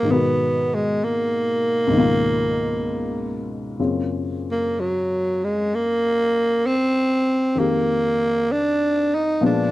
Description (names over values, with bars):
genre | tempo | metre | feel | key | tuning
jazz ballad | 64 BPM | 4/4 | swing 68% on 8ths | unclear | A4 = 439 Hz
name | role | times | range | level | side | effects
growling tenor saxophone | melody | 0.0-9.7 s | Gb3 to Eb4 | -20 LUFS | right 1 dB | slapback echo
warm baby grand piano | accompaniment | 0.0-9.7 s | Db2 to Bb4 | -23 LUFS | left 2 dB | none
room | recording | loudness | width
light reverb | dry, close 1970s-style studio recording | -19 LUFS | side -16 dB against mid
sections
0.0-9.7 A section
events
none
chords
0.1 Abm9; 1.9 Db13; 3.8 Gbmaj9#11; 7.5 Fm11